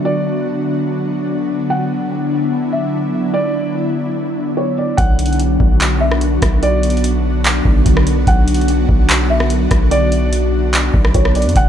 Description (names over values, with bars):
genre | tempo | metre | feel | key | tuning
hip hop, atmospheric cloud-rap | 146 BPM | 4/4 | half-time | B minor | A4 = 440 Hz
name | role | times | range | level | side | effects
ethereal airy pad | sustained chords | 0.0-11.7 s | D3 to F#4 | -18 LUFS | left 1 dB | ensemble chorus, built-in reverb, sidechain pumping
felt-muted upright piano | melody | 0.1-11.7 s | C#5 to F#5 | -22 LUFS | right 1 dB | low-pass filter, tape echo
long sustained 808-style bass | bass | 5.0-11.7 s | E1 to F#2 | -16 LUFS | equal | none
booming analog drum machine | drums | 5.0-11.7 s | handclaps, hi-hat, kick drum, rim click | -15 LUFS | equal | vintage 12-bit sampler grit
room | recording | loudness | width
digital ambience | none | -13 LUFS | side -9 dB against mid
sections
0.0-5.0 A section; 5.0-11.7 B section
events
none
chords
0.0 Bm